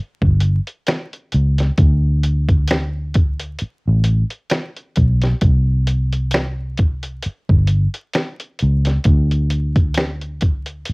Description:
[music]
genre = R&B, neo-soul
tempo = 66 BPM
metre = 4/4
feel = swing 57% on 16ths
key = unclear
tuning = A4 = 440 Hz
[part]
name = vintage muted fingered electric bass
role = bass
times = 0.2-10.9 s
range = G1 to D2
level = -16 LUFS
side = equal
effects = none
[part]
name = dusty soul sampler-style drum kit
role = drums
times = 0.2-10.9 s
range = finger snaps, hi-hat, kick drum, snare drum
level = -17 LUFS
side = equal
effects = cassette tape
[sound]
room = little or no reverb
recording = home recording on cassette, vinyl crackle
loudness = -16 LUFS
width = side -38 dB against mid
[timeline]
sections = 0.0-10.9 A section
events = none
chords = none

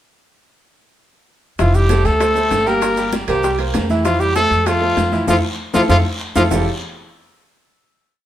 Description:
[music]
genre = Afro-Cuban jazz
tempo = 195 BPM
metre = 4/4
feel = straight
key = F major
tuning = A4 = 437 Hz
[part]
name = warm trumpet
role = melody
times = 1.6-6.4 s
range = F4 to Bb4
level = -18 LUFS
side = equal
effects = none
[part]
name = warm trombone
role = second line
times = 1.6-6.4 s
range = F3 to Bb3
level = -25 LUFS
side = left 2 dB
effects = none
[part]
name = bright baby grand piano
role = accompaniment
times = 1.6-6.7 s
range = E3 to G5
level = -22 LUFS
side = right 2 dB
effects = none
[part]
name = upright bass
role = bass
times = 1.6-6.7 s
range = F1 to F2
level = -19 LUFS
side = equal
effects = none
[part]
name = bongos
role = percussion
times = 1.6-6.6 s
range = none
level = -26 LUFS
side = left 5 dB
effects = none
[part]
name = congas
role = percussion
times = 1.6-6.6 s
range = none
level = -26 LUFS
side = equal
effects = none
[part]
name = guiro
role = percussion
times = 1.6-6.6 s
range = none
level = -32 LUFS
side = left 1 dB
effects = none
[part]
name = maracas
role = percussion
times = 1.6-6.6 s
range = none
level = -34 LUFS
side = right 5 dB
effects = none
[part]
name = timbales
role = percussion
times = 1.6-6.6 s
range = none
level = -30 LUFS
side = right 4 dB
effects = none
[sound]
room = moderate stone room reverb, RT60 1.0 s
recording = band playing live in one room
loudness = -14 LUFS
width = side -12 dB against mid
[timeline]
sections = 1.6-6.5 A section; 6.5-7.7 final chord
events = band accent 5.3-6.5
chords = 1.6 Fmaj9; 2.2 D5; 2.8 Gm; 3.4 C7; 4.1 Fmaj7; 6.5 Fmaj9

